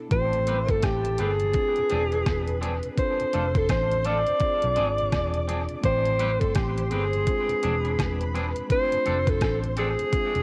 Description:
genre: lovers rock reggae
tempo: 84 BPM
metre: 4/4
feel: swing 60% on 16ths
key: A harmonic minor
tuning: A4 = 440 Hz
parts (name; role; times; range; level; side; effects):
- mellow tine electric piano; accompaniment; 0.0-10.4 s; G#3 to G5; -38 LUFS; equal; cassette tape
- warm alto saxophone; melody; 0.1-10.4 s; G4 to D5; -28 LUFS; equal; cassette tape, tape echo
- soft string machine; second line; 0.4-10.4 s; A3 to E6; -40 LUFS; equal; ensemble chorus, cassette tape, plate reverb
- vintage muted fingered electric bass; bass; 0.1-10.4 s; E1 to B1; -31 LUFS; equal; none
- detuned 8-bit digital drum machine; drums; 0.1-10.4 s; hi-hat, kick drum, rim click; -30 LUFS; equal; overdrive, cassette tape
- tonewheel organ; accompaniment; 0.3-10.4 s; E2 to D4; -43 LUFS; equal; none
- twangy electric guitar; stabs; 0.5-9.9 s; C4 to B4; -38 LUFS; equal; cassette tape, analog delay, plate reverb
room: moderate booth ambience, RT60 0.2 s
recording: home recording on cassette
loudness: -25 LUFS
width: mono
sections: 0.1-10.4 A section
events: none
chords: 0.1 Am9; 1.5 E7b9b13; 3.0 F6; 4.4 E7b9b13; 5.8 Am9; 7.3 E7b9b13; 8.7 F6

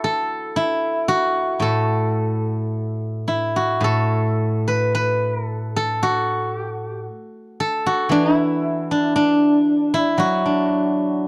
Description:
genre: chinese traditional, Chinese solo plucked strings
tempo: 54-58 BPM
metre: 4/4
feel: rubato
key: unclear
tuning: A4 = 439 Hz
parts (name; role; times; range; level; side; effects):
- steel-string zither; solo; 0.0-11.3 s; A2 to E5; -21 LUFS; equal; none
room: light reverb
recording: dry, close 1970s-style studio recording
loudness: -20 LUFS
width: mono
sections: 0.0-11.3 A section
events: none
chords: none

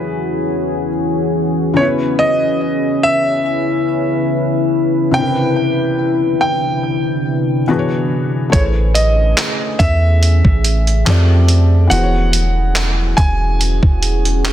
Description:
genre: contemporary R&B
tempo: 71 BPM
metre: 4/4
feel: swing 54% on 16ths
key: E major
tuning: A4 = 440 Hz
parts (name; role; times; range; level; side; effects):
- clear grand piano; melody; 0.0-14.4 s; B4 to G#5; -19 LUFS; right 1 dB; digital delay
- felt-muted upright piano; accompaniment; 0.0-14.5 s; C3 to D5; -22 LUFS; left 4 dB; none
- deep dark ambient pad; sustained chords; 0.0-14.5 s; C3 to B4; -18 LUFS; left 1 dB; chorus, built-in reverb, sidechain pumping
- soft 808-style bass; bass; 8.5-14.5 s; E1 to F2; -13 LUFS; equal; none
- dusty soul sampler-style drum kit; drums; 8.5-14.5 s; handclaps, hi-hat, kick drum; -16 LUFS; equal; none
room: light reverb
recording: dense, heavily limited modern master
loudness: -13 LUFS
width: side -11 dB against mid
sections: 0.0-14.5 A section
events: none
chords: 0.0 E69; 1.8 C#m9; 5.2 Cmaj9; 7.7 E13; 8.5 Amaj9; 11.1 F69; 11.9 E69

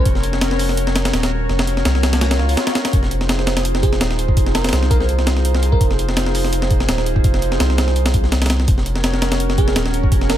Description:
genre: drum and bass, jungle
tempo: 167 BPM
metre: 4/4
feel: swing 54% on 16ths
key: F phrygian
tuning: A4 = 440 Hz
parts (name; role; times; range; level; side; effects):
- bell-like FM electric piano; melody; 0.0-0.2, 3.8-6.0, 9.6-10.4 s; Ab4 to C5; -27 LUFS; right 2 dB; chorus, phaser, dub echo
- warbly tape-like pad; sustained chords; 0.0-10.4 s; Db4 to Db5; -23 LUFS; equal; chorus, built-in reverb
- soft dub sub bass; bass; 0.0-10.4 s; Eb1 to Db2; -19 LUFS; equal; tube saturation
- breakbeat sampler-style drum kit; drums; 0.1-10.4 s; hi-hat, kick drum, snare drum; -18 LUFS; equal; none
- swell; sound effects; 2.4-2.9 s; none; -28 LUFS; right 2 dB; none
room: digital ambience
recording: none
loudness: -15 LUFS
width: side -12 dB against mid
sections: 0.0-10.4 A section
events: swell 2.4-2.9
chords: 0.0 Gb; 2.9 Fm7; 8.7 Gb

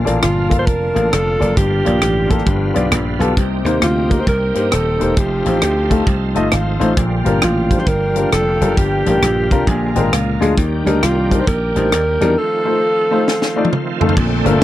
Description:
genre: uptempo gospel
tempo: 133 BPM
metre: 4/4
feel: swing 64% on 8ths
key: Bb major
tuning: A4 = 440 Hz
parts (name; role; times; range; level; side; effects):
- warm grand piano; accompaniment; 0.0-14.6 s; G2 to Bb5; -19 LUFS; left 3 dB; none
- bright tonewheel organ; sustained chords; 0.0-14.6 s; D3 to G4; -25 LUFS; right 4 dB; slow rotary speaker, chorus vibrato
- mellow brass ensemble; sustained chords; 0.0-14.2 s; Bb3 to B5; -29 LUFS; left 1 dB; none
- dry thumbed slap bass; bass; 0.1-14.6 s; Eb1 to G2; -19 LUFS; equal; none
- tight funk drum kit; drums; 0.1-14.6 s; crash cymbal, hi-hat, kick drum, rim click, snare drum, toms; -17 LUFS; equal; none
- breathy alto saxophone; melody; 0.2-14.0 s; F4 to C5; -19 LUFS; right 1 dB; none
room: little or no reverb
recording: dry, close 1970s-style studio recording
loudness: -13 LUFS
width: side -14 dB against mid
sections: 0.0-14.2 A section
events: grand piano fill 6.1-7.0, 9.2-10.6; drum fill 13.3-14.2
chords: 0.0 Bbmaj7; 1.6 Gm7; 2.5 G7; 3.4 Cm7; 5.2 F7; 7.0 Bb6; 8.8 Gm7; 9.7 Bb7; 10.6 Ebmaj7; 12.4 F7

